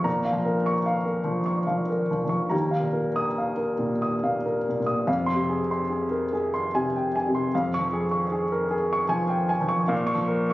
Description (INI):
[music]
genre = neoclassical minimalist piano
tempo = 70-76 BPM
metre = 3/4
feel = rubato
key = F minor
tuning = A4 = 440 Hz
[part]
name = warm upright piano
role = solo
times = 0.0-10.5 s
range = Eb2 to Eb6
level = -23 LUFS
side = equal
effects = none
[sound]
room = light reverb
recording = recorded on a phone in the room, studio reverb, nothing above 7.6 kHz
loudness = -23 LUFS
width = side -17 dB against mid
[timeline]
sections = 0.0-5.1 A section; 5.1-10.5 A section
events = none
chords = 0.1 Bbm; 2.5 Ebsus2; 5.1 Fm; 7.5 Db/F; 9.9 Bbm